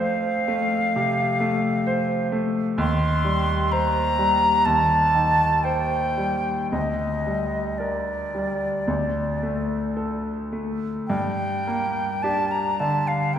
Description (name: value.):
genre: classical, romantic duo for flute and grand piano.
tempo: 51-66 BPM.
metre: 4/4.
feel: rubato.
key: G minor.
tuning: A4 = 440 Hz.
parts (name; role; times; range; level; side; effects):
silver concert flute; melody; 0.0-13.4 s; D5 to C6; -23 LUFS; equal; none.
bright concert grand piano; accompaniment; 0.0-13.4 s; D2 to C5; -24 LUFS; equal; none.
room: wet concert hall reverb, RT60 2.0 s.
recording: recorded in a church or concert hall.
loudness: -21 LUFS.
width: side -9 dB against mid.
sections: 0.0-11.1 A section; 11.1-13.4 B section.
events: none.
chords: 0.0 F; 2.8 Cm/Eb; 6.7 Gm/D; 8.9 D5; 11.1 Gm.